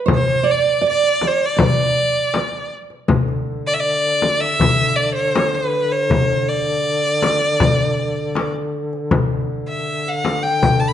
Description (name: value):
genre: Arabic maqam ensemble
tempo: 80 BPM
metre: 4/4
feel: straight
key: D maqam rast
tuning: A4 = 440 Hz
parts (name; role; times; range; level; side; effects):
- clear violin; melody; 0.1-10.9 s; B4 to B5; -18 LUFS; equal; none
- nylon-string guitar; second line; 0.1-2.7 s; C5+50c to D5; -20 LUFS; right 10 dB; none
- darbuka; percussion; 0.1-10.9 s; none; -22 LUFS; left 3 dB; none
- frame drum; percussion; 0.1-10.8 s; none; -21 LUFS; left 2 dB; none
- warm duduk; drone; 3.1-10.9 s; D3; -25 LUFS; left 1 dB; none
room: moderate recital hall reverb, RT60 1.3 s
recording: nothing above 10.6 kHz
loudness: -16 LUFS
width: side -10 dB against mid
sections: 0.0-3.1 A section; 3.1-10.9 B section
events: none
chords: none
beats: | 0.10 0.85 1.60 2.35 | 3.10 3.85 4.60 5.36 | 6.11 6.86 7.61 8.36 | 9.11 9.87 10.62